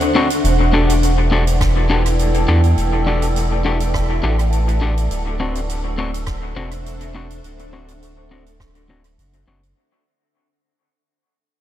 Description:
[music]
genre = ambient dub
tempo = 103 BPM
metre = 4/4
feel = straight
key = E minor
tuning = A4 = 442 Hz
[part]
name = granular cloud pad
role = sustained chords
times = 0.0-9.8 s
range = D4 to A5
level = -23 LUFS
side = equal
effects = built-in reverb
[part]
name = soft-mallet drum kit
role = drums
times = 0.0-9.7 s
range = hi-hat, rim click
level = -30 LUFS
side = right 2 dB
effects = dub echo
[part]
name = electric guitar at the edge of break-up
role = stabs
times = 0.1-9.6 s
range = C4 to A4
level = -22 LUFS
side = left 4 dB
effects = tremolo, low-pass filter, dub echo
[part]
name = warm sub bass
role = bass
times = 0.4-9.7 s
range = D1 to E2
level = -18 LUFS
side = equal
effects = tube saturation
[part]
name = wind-like tuned noise texture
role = texture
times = 1.0-9.8 s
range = A3 to A4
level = -32 LUFS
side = right 1 dB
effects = built-in reverb
[part]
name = electronic kick drum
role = drums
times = 1.6-8.7 s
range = none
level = -23 LUFS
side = equal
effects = none
[sound]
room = light reverb, small room ambience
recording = none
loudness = -15 LUFS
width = side -12 dB against mid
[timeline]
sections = 0.4-9.8 A section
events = break 0.0-0.4; fade-out 0.4-9.8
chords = 0.4 Em11; 5.1 D7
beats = | 0.44 1.03 1.61 2.19 | 2.77 3.36 3.94 4.52 | 5.10 5.69 6.27 6.85 | 7.43 8.02 8.60 9.18

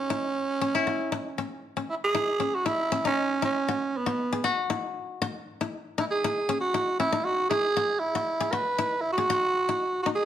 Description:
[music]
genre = afrobeat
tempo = 117 BPM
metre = 4/4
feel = straight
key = C# minor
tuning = A4 = 436 Hz
[part]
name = growling tenor saxophone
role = melody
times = 0.0-10.2 s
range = B3 to B4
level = -26 LUFS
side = right 2 dB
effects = none
[part]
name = koto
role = arpeggios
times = 0.1-10.2 s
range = C#4 to G#4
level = -30 LUFS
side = left 5 dB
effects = none
[sound]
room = moderate large studio reverb, RT60 1.2 s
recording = none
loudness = -25 LUFS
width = side -10 dB against mid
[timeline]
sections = 0.0-2.1 A section; 2.1-10.2 B section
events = none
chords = 0.0 C#m; 2.1 C#madd9 (rootless)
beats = | 0.10 0.61 1.12 1.63 | 2.15 2.66 3.17 3.68 | 4.19 4.70 5.21 5.72 | 6.23 6.74 7.25 7.77 | 8.28 8.79 9.30 9.81

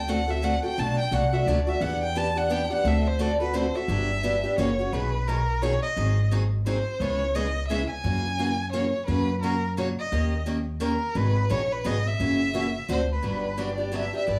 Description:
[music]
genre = acoustic string swing (jazz manouche)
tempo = 173 BPM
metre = 3/4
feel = swing 60% on 8ths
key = B major from 4.9 s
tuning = A4 = 440 Hz
[part]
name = warm violin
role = melody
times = 0.0-14.4 s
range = A#4 to A5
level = -31 LUFS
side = equal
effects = plate reverb
[part]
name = upright bass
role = bass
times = 0.0-14.4 s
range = F#1 to F#2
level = -30 LUFS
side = equal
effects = none
[part]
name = picked steel-string acoustic guitar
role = accompaniment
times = 0.1-14.4 s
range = B2 to B4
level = -30 LUFS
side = equal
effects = none
[sound]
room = moderate small room reverb, RT60 0.6 s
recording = small room reverb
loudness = -26 LUFS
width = mono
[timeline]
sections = 0.0-4.9 A section; 4.9-13.2 B section; 13.2-14.4 C section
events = violin solo 0.0-4.9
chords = 0.0 D7; 0.8 Bm7; 1.8 Em7; 2.9 D7; 3.9 Gmaj7; 4.6 F#7; 4.9 B6; 6.0 G#7; 7.0 C#m7; 8.0 F#7; 9.1 F#; 10.1 D#7; 11.2 G#m7; 12.2 F#7; 12.9 D7; 13.2 Gmaj7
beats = 0.08 0.43 | 0.78 1.12 1.47 | 1.81 2.16 2.50 | 2.85 3.20 3.54 | 3.89 4.23 4.58 | 4.93 5.27 5.62 | 5.96 6.31 6.66 | 7.00 7.35 7.70 | 8.04 8.39 8.73 | 9.08 9.43 9.77 | 10.12 10.46 10.81 | 11.16 11.50 11.85 | 12.20 12.54 12.89 | 13.24 13.58 13.93 | 14.28

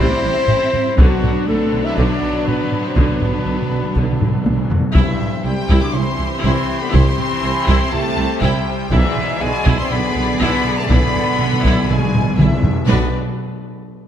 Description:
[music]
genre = cinematic, epic orchestral film score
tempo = 121 BPM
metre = 4/4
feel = straight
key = unclear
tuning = A4 = 445 Hz
[part]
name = warm symphonic violin section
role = melody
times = 0.0-13.1 s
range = B3 to D6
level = -28 LUFS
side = left 4 dB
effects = none
[part]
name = rich studio violin section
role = second line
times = 0.0-13.2 s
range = B3 to D5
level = -26 LUFS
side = left 2 dB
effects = none
[part]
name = rich symphonic viola section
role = accompaniment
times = 0.0-13.2 s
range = C3 to F#4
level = -26 LUFS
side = equal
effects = none
[part]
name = clear trombone section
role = sustained chords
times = 0.0-13.1 s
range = G2 to E4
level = -27 LUFS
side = right 4 dB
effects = none
[part]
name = mellow French horn section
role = sustained chords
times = 0.0-13.1 s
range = B2 to E5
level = -23 LUFS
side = left 3 dB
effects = none
[part]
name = clear trumpet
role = stabs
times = 0.0-4.4 s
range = F#4 to E5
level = -28 LUFS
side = left 1 dB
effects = none
[part]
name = mellow tuba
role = bass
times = 0.0-13.1 s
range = A1 to C2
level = -26 LUFS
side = right 3 dB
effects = none
[part]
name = rich symphonic cello section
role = bass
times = 0.0-13.2 s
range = C2 to E4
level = -25 LUFS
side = right 3 dB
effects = none
[part]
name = rich symphonic double bass section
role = bass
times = 0.0-13.2 s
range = A1 to C2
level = -23 LUFS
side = right 2 dB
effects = none
[part]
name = taiko ensemble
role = drums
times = 0.5-12.9 s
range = none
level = -18 LUFS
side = equal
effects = none
[part]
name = timpani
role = percussion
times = 1.0-4.9, 8.9-13.1 s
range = B2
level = -22 LUFS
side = equal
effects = none
[part]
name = concert flute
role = second line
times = 5.0-13.2 s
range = E5 to D6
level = -27 LUFS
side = left 3 dB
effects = none
[sound]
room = moderate concert hall reverb, RT60 2.0 s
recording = none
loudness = -14 LUFS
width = side -10 dB against mid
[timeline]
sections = 0.0-5.0 A section; 5.0-12.9 B section; 12.9-14.1 C section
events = timpani fill 1.0-5.0, 8.9-12.9; drum fill 4.2-5.0, 12.1-12.9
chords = 0.0 Am7; 1.0 Bm; 5.0 C; 8.9 E7/B; 12.9 Bm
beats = 0.49 | 0.98 1.48 1.98 2.47 | 2.97 3.46 3.96 4.46 | 4.95 5.45 5.95 6.44 | 6.94 7.43 7.93 8.42 | 8.92 9.41 9.91 10.40 | 10.90 11.39 11.89 12.38 | 12.88

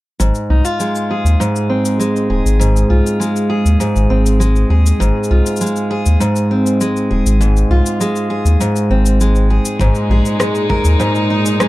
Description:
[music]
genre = folktronica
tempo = 100 BPM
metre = 4/4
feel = straight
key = Ab major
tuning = A4 = 440 Hz
[part]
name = picked steel-string acoustic guitar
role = arpeggios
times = 0.2-11.7 s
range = Ab2 to Bb4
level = -15 LUFS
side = equal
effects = low-pass filter, tape echo
[part]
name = warm sub bass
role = bass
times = 0.2-11.0 s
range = Eb1 to Eb2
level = -12 LUFS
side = equal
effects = none
[part]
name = electronic cabasa and rim click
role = drums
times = 0.2-11.7 s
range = none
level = -23 LUFS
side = left 3 dB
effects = none
[part]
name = clear string quartet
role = sustained chords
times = 9.8-11.7 s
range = Bb2 to Eb4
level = -20 LUFS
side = left 1 dB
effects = none
[part]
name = kick drum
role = drums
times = 9.8-10.8 s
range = none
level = -19 LUFS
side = equal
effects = none
[sound]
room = light reverb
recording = dry, close 1970s-style studio recording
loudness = -12 LUFS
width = side -18 dB against mid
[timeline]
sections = 0.2-11.7 A section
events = none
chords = 0.2 Ab6/Eb; 9.8 Absus2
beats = | 0.20 0.80 1.40 2.00 | 2.60 3.20 3.80 4.40 | 5.00 5.60 6.20 6.80 | 7.40 8.00 8.60 9.20 | 9.80 10.40 11.00 11.60

